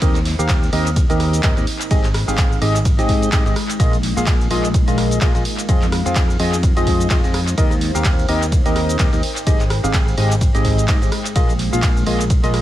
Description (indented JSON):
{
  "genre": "piano house",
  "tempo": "127 BPM",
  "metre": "4/4",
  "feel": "swing 57% on 16ths",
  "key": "Eb major",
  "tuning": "A4 = 445 Hz",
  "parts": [
    { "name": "percussive organ stab", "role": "riff", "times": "0.0-12.6 s", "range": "Ab2 to F5", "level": "-21 LUFS", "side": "equal", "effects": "analog chorus, sidechain pumping, analog delay" },
    { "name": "modern bright fingered electric bass", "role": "bass", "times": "0.0-12.6 s", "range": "Ab1 to Ab2", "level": "-21 LUFS", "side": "equal", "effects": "sidechain pumping" },
    { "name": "electronic kick drum", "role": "drums", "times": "0.0-12.4 s", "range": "none", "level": "-17 LUFS", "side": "equal", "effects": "none" },
    { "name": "punchy analog drum machine", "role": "drums", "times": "0.0-12.6 s", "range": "handclaps, hi-hat, ride cymbal, rim click, shaker", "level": "-24 LUFS", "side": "equal", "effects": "analog delay" },
    { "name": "deep dark ambient pad", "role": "texture", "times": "0.0-12.6 s", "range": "Ab3 to G5", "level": "-28 LUFS", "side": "left 1 dB", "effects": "chorus, built-in reverb, sidechain pumping" }
  ],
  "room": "digital ambience",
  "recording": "echo-heavy mix",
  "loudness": "-14 LUFS",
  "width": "side -13 dB against mid",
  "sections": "0.0-12.6 A section",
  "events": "none",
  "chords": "0.0 Eb6; 1.7 Abmaj7; 3.6 Bb7sus4; 5.5 Fm7; 7.6 Eb6; 9.2 Abmaj7; 11.1 Bb7sus4"
}